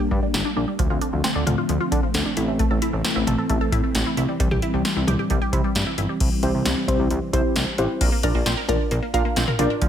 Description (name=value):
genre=synth-pop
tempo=133 BPM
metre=4/4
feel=straight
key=unclear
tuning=A4 = 441 Hz
part: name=string machine, cellos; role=sustained chords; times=0.0-8.0 s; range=D3 to F4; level=-26 LUFS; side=left 1 dB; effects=ensemble chorus
part: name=resonant blip pluck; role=arpeggios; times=0.0-9.9 s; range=F3 to Bb4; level=-28 LUFS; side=equal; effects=phaser, digital delay
part: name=fat analog bass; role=bass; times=0.1-9.9 s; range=G1 to D3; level=-25 LUFS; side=equal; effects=none
part: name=electro analog drum machine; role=drums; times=0.1-9.9 s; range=cowbell, crash cymbal, hi-hat, kick drum, snare drum, toms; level=-23 LUFS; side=equal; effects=gated reverb
part: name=warbly dusty pluck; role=accompaniment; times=6.4-9.8 s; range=C4 to F5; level=-24 LUFS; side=equal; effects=chorus
room=little or no reverb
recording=none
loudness=-19 LUFS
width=side -9 dB against mid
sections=0.0-6.2 A section; 6.2-8.0 B section; 8.0-9.9 C section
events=none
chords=0.0 Gm; 0.8 Dm7; 2.4 Am; 4.2 C; 8.0 Bb